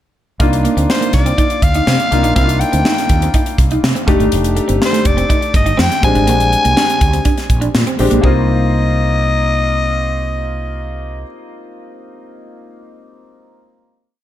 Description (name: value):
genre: polished 1980s jazz-funk pop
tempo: 122 BPM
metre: 4/4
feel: straight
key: C minor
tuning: A4 = 440 Hz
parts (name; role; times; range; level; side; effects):
- clear concert grand piano; accompaniment; 0.4-14.2 s; G3 to G4; -20 LUFS; left 2 dB; wide subtle chorus
- mellow fretless electric bass; bass; 0.4-11.2 s; F1 to C3; -17 LUFS; equal; none
- crisp fusion drum kit; drums; 0.4-8.4 s; hi-hat, kick drum, snare drum; -16 LUFS; equal; gated reverb
- clean electric guitar; riff; 0.5-8.4 s; A3 to Eb4; -21 LUFS; right 4 dB; lush chorus
- raspy soprano saxophone; melody; 0.9-11.2 s; C5 to Ab5; -18 LUFS; left 2 dB; none
room: small room ambience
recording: none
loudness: -12 LUFS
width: side -12 dB against mid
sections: 0.4-8.2 verse; 8.2-12.2 final chord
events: none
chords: 0.4 Cm11; 4.1 F13; 6.0 Bb13; 8.2 Cm7